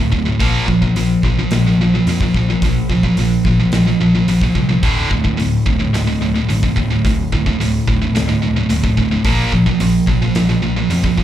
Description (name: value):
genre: heavy metal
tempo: 108 BPM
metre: 4/4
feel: straight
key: unclear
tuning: A4 = 440 Hz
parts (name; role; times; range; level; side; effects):
- high-gain distorted guitar; riff; 0.0-11.2 s; D2 to Bb3; -17 LUFS; right 5 dB; distortion
- tight distorted guitar; riff; 0.0-11.2 s; D2 to Bb3; -20 LUFS; left 9 dB; distortion
- overdriven picked electric bass; bass; 0.0-11.2 s; D1 to F2; -19 LUFS; left 1 dB; none
- big rock drum kit; drums; 0.1-11.2 s; hi-hat, kick drum, snare drum; -20 LUFS; equal; none
room: light reverb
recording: live gig heard through the venue's PA, club reverb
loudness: -13 LUFS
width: side -11 dB against mid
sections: 0.0-11.2 A section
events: none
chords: 0.4 Bb5; 4.8 D5; 9.3 Bb5